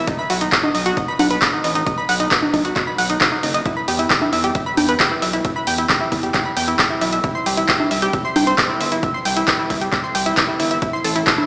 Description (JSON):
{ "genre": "uplifting trance", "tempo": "134 BPM", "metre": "4/4", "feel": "straight", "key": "E harmonic minor", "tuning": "A4 = 437 Hz", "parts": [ { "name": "gritty driven synth bass", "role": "bass", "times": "0.0-11.2 s", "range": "F#1 to E2", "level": "-24 LUFS", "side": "equal", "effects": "sidechain pumping" }, { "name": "analog pluck", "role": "arpeggios", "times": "0.1-11.4 s", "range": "D#4 to C6", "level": "-20 LUFS", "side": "equal", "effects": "chorus, sidechain pumping, tape echo" }, { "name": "electronic kick drum", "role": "drums", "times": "0.1-11.4 s", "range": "none", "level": "-24 LUFS", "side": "equal", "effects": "none" }, { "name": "punchy analog drum machine", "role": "drums", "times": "0.1-11.5 s", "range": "congas, handclaps, hi-hat", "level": "-19 LUFS", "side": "equal", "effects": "none" } ], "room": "moderate lush hall reverb, RT60 2.2 s", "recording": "played on a big sound system in a bare room, large studio reverb, small speaker sound", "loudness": "-15 LUFS", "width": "side -25 dB against mid", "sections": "0.0-11.5 A section", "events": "none", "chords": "0.1 B; 3.7 Em; 7.2 C; 10.8 Am" }